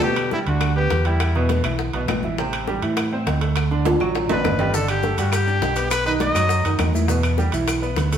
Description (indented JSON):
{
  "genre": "latin, salsa",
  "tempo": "204 BPM",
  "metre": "4/4",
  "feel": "straight",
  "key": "G major",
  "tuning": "A4 = 440 Hz",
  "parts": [
    { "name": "clear trumpet", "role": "melody", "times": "0.0-1.5, 4.3-6.8 s", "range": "E4 to D#5", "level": "-23 LUFS", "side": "left 2 dB", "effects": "none" },
    { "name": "bright concert grand piano", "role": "accompaniment", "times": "0.0-8.2 s", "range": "B2 to D5", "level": "-25 LUFS", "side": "right 2 dB", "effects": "none" },
    { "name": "bongos", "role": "percussion", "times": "0.0-8.1 s", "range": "none", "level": "-30 LUFS", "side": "left 4 dB", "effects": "none" },
    { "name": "congas", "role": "percussion", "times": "0.0-8.1 s", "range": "none", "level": "-31 LUFS", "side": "left 2 dB", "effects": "none" },
    { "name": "claves", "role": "percussion", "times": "0.2-7.8 s", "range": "none", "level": "-36 LUFS", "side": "left 3 dB", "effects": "none" },
    { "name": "timbales", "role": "percussion", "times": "0.2-8.2 s", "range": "none", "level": "-28 LUFS", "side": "right 2 dB", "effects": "none" },
    { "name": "fingered electric bass", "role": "bass", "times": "0.5-8.2 s", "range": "G1 to A2", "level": "-22 LUFS", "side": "right 1 dB", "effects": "none" },
    { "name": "maracas", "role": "percussion", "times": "4.7-8.2 s", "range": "none", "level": "-35 LUFS", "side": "left 4 dB", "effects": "none" }
  ],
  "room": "wet stone room reverb, RT60 1.3 s",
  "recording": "band playing live in one room",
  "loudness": "-18 LUFS",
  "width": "side -9 dB against mid",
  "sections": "0.0-8.2 A section",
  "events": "drum fill 3.9-4.7",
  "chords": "0.0 G; 1.2 Em; 2.4 Am7; 3.6 D; 4.7 Gadd9; 5.9 B; 7.1 Em",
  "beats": "| 0.03 0.32 0.61 0.91 | 1.20 1.50 1.79 2.09 | 2.38 2.67 2.97 3.26 | 3.56 3.85 4.15 4.44 | 4.74 5.03 5.32 5.62 | 5.91 6.21 6.50 6.80 | 7.09 7.38 7.68 7.97"
}